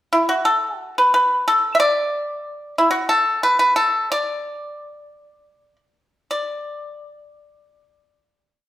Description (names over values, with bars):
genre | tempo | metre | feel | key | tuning
chinese traditional, Chinese solo plucked strings | 57-93 BPM | 2/4 | rubato | D gong mode | A4 = 442 Hz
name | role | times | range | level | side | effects
pipa | solo | 0.1-8.7 s | E4 to E5 | -17 LUFS | equal | none
room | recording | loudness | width
wet large studio reverb, RT60 1.2 s | band playing live in one room | -17 LUFS | side -13 dB against mid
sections
0.0-0.5 pickup bar; 0.5-6.3 A section; 6.3-8.7 final note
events
slowing down 3.1-6.3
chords
none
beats
| 0.46 1.15 | 1.82 2.48 | 3.12 3.79 | 4.52 5.35 | 6.32 7.34 | 8.35